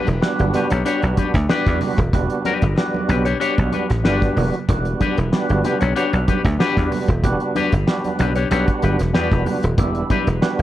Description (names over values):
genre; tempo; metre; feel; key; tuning
funk; 94 BPM; 4/4; straight; E dorian; A4 = 440 Hz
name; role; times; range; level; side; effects
electric guitar with an envelope filter; accompaniment; 0.0-10.6 s; D4 to C#5; -24 LUFS; left 7 dB; spring reverb
percussive tonewheel organ; stabs; 0.0-10.6 s; F#3 to F#4; -23 LUFS; right 3 dB; overdrive, chorus vibrato, slow rotary speaker
dry thumbed slap bass; bass; 0.1-10.6 s; D#1 to E2; -19 LUFS; equal; none
cloth-damped thuddy drum kit; drums; 0.1-10.6 s; hi-hat, kick drum, snare drum; -21 LUFS; equal; none
congas; percussion; 0.2-10.6 s; none; -28 LUFS; right 5 dB; none
room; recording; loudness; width
light reverb; none; -16 LUFS; side -13 dB against mid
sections
0.0-10.6 A section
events
none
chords
0.0 Em7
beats
0.22 0.86 1.50 | 2.14 2.78 3.41 4.05 | 4.69 5.33 5.96 6.60 | 7.24 7.88 8.51 9.15 | 9.79 10.42